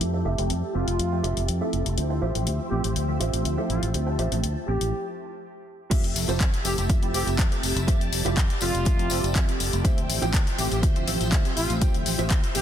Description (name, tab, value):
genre	filtered disco house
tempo	122 BPM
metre	4/4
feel	straight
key	F major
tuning	A4 = 440 Hz
part	funky polysynth comp	accompaniment	0.0-12.6 s	F3 to E5	-31 LUFS	right 1 dB	chorus, phaser, sidechain pumping, low-pass filter
part	string machine, full ensemble	sustained chords	0.0-12.6 s	F3 to A5	-34 LUFS	equal	phaser, ensemble chorus, sidechain pumping, low-pass filter
part	fingered electric bass	bass	0.0-12.6 s	F1 to F2	-27 LUFS	equal	tube saturation, sidechain pumping, low-pass filter
part	house drum kit	drums	0.0-12.6 s	crash cymbal, handclaps, hi-hat	-30 LUFS	left 3 dB	overdrive, sidechain pumping on hats, small room ambience, sidechain pumping on cymbals
part	mellow electric guitar	riff	0.1-12.6 s	F4 to G5	-35 LUFS	right 6 dB	vintage 12-bit sampler grit, sidechain pumping, low-pass filter
part	clear horn section	melody	0.7-12.6 s	F4 to G4	-32 LUFS	equal	vintage 12-bit sampler grit, sidechain pumping, low-pass filter, dub echo
part	electronic kick drum	drums	5.9-12.4 s	none	-22 LUFS	equal	overdrive, small room ambience
part	tambourine	percussion	5.9-12.6 s	none	-36 LUFS	left 6 dB	sidechain pumping on perc, low-pass filter on perc
room	light reverb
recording	dense, heavily limited modern master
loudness	-22 LUFS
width	side -10 dB against mid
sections	0.0-5.9 A section; 5.9-12.6 B section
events	filter sweep 0.0-5.9; break 4.9-5.9; drop 5.9-12.6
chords	0.0 Fmaj9; 2.0 Dm11; 5.9 Fmaj9; 9.8 Dm11